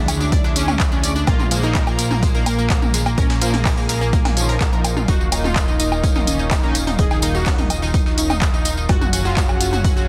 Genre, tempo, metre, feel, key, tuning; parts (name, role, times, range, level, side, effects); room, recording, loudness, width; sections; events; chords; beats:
melodic techno; 126 BPM; 4/4; straight; Eb minor; A4 = 440 Hz
lush unison pad; sustained chords; 0.0-10.1 s; D3 to Bb4; -33 LUFS; equal; chorus, sidechain pumping
analog pluck; arpeggios; 0.0-10.0 s; Ab3 to Gb6; -29 LUFS; equal; chorus, sidechain pumping, tape echo
plucky analog bass; bass; 0.0-10.1 s; Eb1 to D2; -26 LUFS; equal; sidechain pumping
dusty soul sampler-style drum kit; drums; 0.1-10.1 s; hi-hat, snare drum; -37 LUFS; equal
techno drum kit; drums; 0.1-9.8 s; handclaps, hi-hat, toms, woodblock; -26 LUFS; equal
tambourine; percussion; 0.1-10.1 s; -32 LUFS; equal
electronic kick drum; drums; 0.3-9.9 s; -22 LUFS; equal; overdrive
analog synth brass; melody; 0.6-9.4 s; F3 to Ab4; -30 LUFS; equal; chorus, sidechain pumping, digital delay
sync-sweep polysynth; stabs; 1.5-10.1 s; Bb2 to Gb4; -30 LUFS; equal; chorus, cassette tape, sidechain pumping, tape echo
swell; sound effects; 4.4-5.1 s; -38 LUFS; equal
light reverb; dense, heavily limited modern master; -18 LUFS; mono
0.0-10.1 A section
0.0 D5; 1.3 Bb5; 5.1 Eb5; 8.9 Gb5
0.32 0.80 | 1.27 1.75 2.23 2.70 | 3.18 3.65 4.13 4.61 | 5.08 5.56 6.04 6.51 | 6.99 7.46 7.94 8.42 | 8.89 9.37 9.85